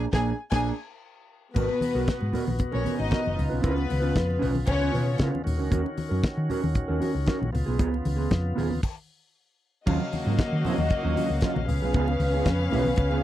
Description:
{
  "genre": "disco",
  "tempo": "116 BPM",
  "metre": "4/4",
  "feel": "straight",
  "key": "Eb minor",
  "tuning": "A4 = 441 Hz",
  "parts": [
    { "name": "warm studio string section", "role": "second line", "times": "0.0-5.2, 9.9-13.2 s", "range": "Bb3 to Ab5", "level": "-29 LUFS", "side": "left 3 dB", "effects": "none" },
    { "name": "mellow electric guitar", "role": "accompaniment", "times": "0.0-13.2 s", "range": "Gb3 to Cb5", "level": "-30 LUFS", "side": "right 4 dB", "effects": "none" },
    { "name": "hollow-body short-scale fingered electric bass", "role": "bass", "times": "0.0-13.2 s", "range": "Gb1 to Eb3", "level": "-27 LUFS", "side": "equal", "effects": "none" },
    { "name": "damped 70s drum kit", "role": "drums", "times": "0.1-13.1 s", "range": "crash cymbal, hi-hat, kick drum, snare drum", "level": "-26 LUFS", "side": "equal", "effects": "none" },
    { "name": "bright tonewheel organ", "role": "sustained chords", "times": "1.5-13.2 s", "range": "Cb3 to F5", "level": "-34 LUFS", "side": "left 1 dB", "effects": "overdrive, slow rotary speaker" },
    { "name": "congas", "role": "percussion", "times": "1.5-13.2 s", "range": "none", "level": "-35 LUFS", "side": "left 3 dB", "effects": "none" }
  ],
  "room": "little or no reverb",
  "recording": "dry, close 1970s-style studio recording",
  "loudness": "-23 LUFS",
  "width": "side -13 dB against mid",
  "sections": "0.0-1.6 A section; 1.6-9.9 B section; 9.9-13.2 C section",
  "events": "band accent 0.0-1.6; stop 8.8-9.9",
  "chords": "0.0 Bb7; 1.6 Abm9; 3.4 Db7; 5.5 Ebm7; 7.5 Db7; 9.9 Ebm9; 11.7 Db7"
}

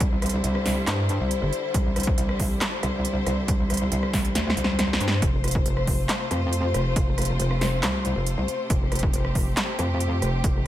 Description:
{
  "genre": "heavy wobble dubstep",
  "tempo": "138 BPM",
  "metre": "4/4",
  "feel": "half-time",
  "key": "unclear",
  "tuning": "A4 = 440 Hz",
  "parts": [
    { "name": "rich studio string section", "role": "sustained chords", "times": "0.0-10.7 s", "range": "C3 to C5", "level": "-30 LUFS", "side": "left 2 dB", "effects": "sidechain pumping" },
    { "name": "metallic wobble bass", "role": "bass", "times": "0.0-10.7 s", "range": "F1 to G2", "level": "-25 LUFS", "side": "equal", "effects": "distortion, chorus, overdrive" },
    { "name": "big-room dance drum kit", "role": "drums", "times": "0.0-10.5 s", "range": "handclaps, hi-hat, rim click, snare drum", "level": "-28 LUFS", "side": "right 1 dB", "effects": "overdrive" },
    { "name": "electronic kick drum", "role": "drums", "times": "0.0-10.5 s", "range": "none", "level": "-25 LUFS", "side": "equal", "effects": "overdrive" }
  ],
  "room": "little or no reverb",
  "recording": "none",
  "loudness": "-22 LUFS",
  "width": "side -13 dB against mid",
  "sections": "0.0-10.7 A section",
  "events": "drum fill 4.4-5.2",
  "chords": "0.0 Cadd9; 5.2 F"
}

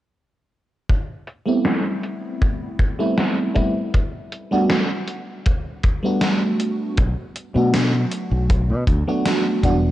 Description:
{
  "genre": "vaporwave",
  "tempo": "79 BPM",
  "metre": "4/4",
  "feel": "swing 53% on 16ths",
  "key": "A dorian",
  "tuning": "A4 = 440 Hz",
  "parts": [
    { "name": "gated 80s digital drum machine", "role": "drums", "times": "0.9-9.8 s", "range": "hi-hat, snare drum", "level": "-24 LUFS", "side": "equal", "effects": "gated reverb, gated reverb snare, low-pass filter on hats, vintage 12-bit sampler grit, small room ambience, low-pass filter on snare" },
    { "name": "kick drum", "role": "drums", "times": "0.9-9.8 s", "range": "none", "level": "-20 LUFS", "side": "equal", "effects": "vintage 12-bit sampler grit, small room ambience" },
    { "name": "FM electric piano with soft pad layer", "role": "accompaniment", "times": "1.5-9.8 s", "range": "E3 to F#4", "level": "-21 LUFS", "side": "right 1 dB", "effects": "phaser, lush chorus, analog delay" },
    { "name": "fingered electric bass", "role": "bass", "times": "7.0-9.9 s", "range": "E1 to B2", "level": "-20 LUFS", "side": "equal", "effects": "none" }
  ],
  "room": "light reverb, small room ambience",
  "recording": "cassette tape",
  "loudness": "-18 LUFS",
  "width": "side -14 dB against mid",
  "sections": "0.9-9.9 A section",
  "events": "filter sweep on drum 0.9-9.9",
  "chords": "0.9 Am9; 3.9 Gmaj7; 7.0 Bm7"
}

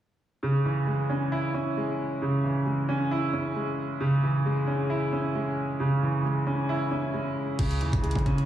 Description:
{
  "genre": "hip hop, trap",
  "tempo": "134 BPM",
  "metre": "4/4",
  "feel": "half-time",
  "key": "C# minor",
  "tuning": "A4 = 440 Hz",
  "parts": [
    { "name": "warm concert grand piano", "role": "accompaniment", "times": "0.4-8.5 s", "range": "C#3 to E4", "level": "-25 LUFS", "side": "right 1 dB", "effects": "wide subtle chorus" },
    { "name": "long sustained 808-style bass", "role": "bass", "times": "7.6-8.5 s", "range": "C#2 to C#3", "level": "-27 LUFS", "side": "equal", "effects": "none" },
    { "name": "trap drum kit", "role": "drums", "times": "7.6-8.5 s", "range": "crash cymbal, hi-hat, kick drum", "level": "-28 LUFS", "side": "equal", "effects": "vintage 12-bit sampler grit" }
  ],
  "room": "wet lush hall reverb, RT60 1.6 s",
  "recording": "dreamy mix soaked in reverb, small room ambience",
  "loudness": "-25 LUFS",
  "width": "side -11 dB against mid",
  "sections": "0.4-7.6 A section",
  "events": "none",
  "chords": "0.4 C#m"
}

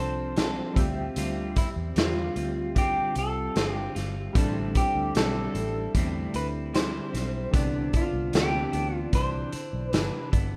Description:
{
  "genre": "indie pop, bedroom pop",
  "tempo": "75 BPM",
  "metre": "4/4",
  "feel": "straight",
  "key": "D dorian",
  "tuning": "A4 = 440 Hz",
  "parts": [
    { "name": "electric guitar through a small old amp", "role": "melody", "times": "0.0-10.3 s", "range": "E4 to C5", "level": "-34 LUFS", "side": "equal", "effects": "lush chorus, analog delay" },
    { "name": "chorused retro synth keys", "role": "accompaniment", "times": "0.0-10.6 s", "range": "D3 to E5", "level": "-38 LUFS", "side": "equal", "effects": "tremolo, cassette tape" },
    { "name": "clean electric guitar", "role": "accompaniment", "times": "0.0-10.6 s", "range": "A2 to A4", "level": "-36 LUFS", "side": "equal", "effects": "lush chorus, warbly pitch drift" },
    { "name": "vintage muted fingered electric bass", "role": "bass", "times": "0.0-10.6 s", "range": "G1 to E2", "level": "-35 LUFS", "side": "equal", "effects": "none" },
    { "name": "raw garage drum kit", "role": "drums", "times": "0.4-10.5 s", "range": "hi-hat, kick drum, snare drum", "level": "-30 LUFS", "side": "equal", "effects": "none" }
  ],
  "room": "light reverb, small room ambience",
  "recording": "rough home demo mix",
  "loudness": "-27 LUFS",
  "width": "mono",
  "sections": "0.0-10.6 A section",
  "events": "none",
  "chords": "0.0 G9sus4; 0.8 Dm11; 4.4 Am11; 7.5 Cmaj9"
}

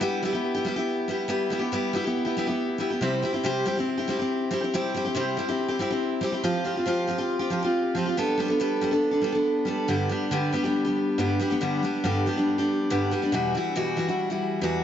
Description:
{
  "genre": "rock",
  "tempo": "140 BPM",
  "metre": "4/4",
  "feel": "straight",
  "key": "G major",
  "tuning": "A4 = 441 Hz",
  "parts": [
    { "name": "picked steel-string acoustic guitar", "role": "solo", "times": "0.0-14.8 s", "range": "E2 to A4", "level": "-23 LUFS", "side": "equal", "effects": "analog delay" }
  ],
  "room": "moderate plate reverb, RT60 3.6 s",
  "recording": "echo-heavy mix, nothing above 7.8 kHz",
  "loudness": "-23 LUFS",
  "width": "side -10 dB against mid",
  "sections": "0.0-9.9 A section; 9.9-14.8 B section",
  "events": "none",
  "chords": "0.0 Em/G; 3.0 C; 6.4 Fsus2; 8.2 Gadd9; 9.9 G; 13.3 Emadd9"
}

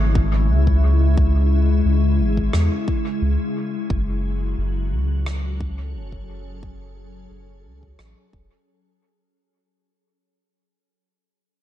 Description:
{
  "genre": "ambient dub",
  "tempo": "88 BPM",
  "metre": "4/4",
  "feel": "straight",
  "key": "unclear",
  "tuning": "A4 = 442 Hz",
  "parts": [
    { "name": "soft additive organ-like pad", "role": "sustained chords", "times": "0.0-9.3 s", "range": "C#3 to A4", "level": "-25 LUFS", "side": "left 3 dB", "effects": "ensemble chorus, built-in reverb, vintage 12-bit sampler grit" },
    { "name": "soft dub sub bass", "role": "bass", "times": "0.0-8.5 s", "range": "E1 to E2", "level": "-19 LUFS", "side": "equal", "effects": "none" },
    { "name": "electronic kick drum", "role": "drums", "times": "0.2-8.5 s", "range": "none", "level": "-23 LUFS", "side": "equal", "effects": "none" },
    { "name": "rim click", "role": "drums", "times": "2.5-8.1 s", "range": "none", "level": "-34 LUFS", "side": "equal", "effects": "dub echo" }
  ],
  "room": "small room ambience",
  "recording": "nothing above 10.4 kHz",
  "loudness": "-18 LUFS",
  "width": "side -12 dB against mid",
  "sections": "0.0-9.4 A section",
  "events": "fade-out 0.0-9.4; filter sweep on sub bass 0.0-9.4",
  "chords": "0.0 C#m; 3.9 F#m9"
}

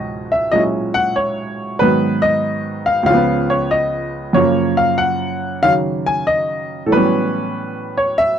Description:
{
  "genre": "solo jazz",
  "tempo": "94 BPM",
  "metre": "4/4",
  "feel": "swing 67% on 8ths",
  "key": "unclear",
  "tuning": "A4 = 440 Hz",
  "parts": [
    { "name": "clear baby grand piano", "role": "solo", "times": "0.0-8.4 s", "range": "C#2 to G#5", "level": "-15 LUFS", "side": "equal", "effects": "none" }
  ],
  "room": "little or no reverb",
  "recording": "dry, close 1970s-style studio recording",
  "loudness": "-15 LUFS",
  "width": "side -8 dB against mid",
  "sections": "0.0-8.4 A section",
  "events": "none",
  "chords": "0.0 C#m11; 1.8 G#m7; 3.1 C#7; 4.4 F#maj7; 6.9 A13"
}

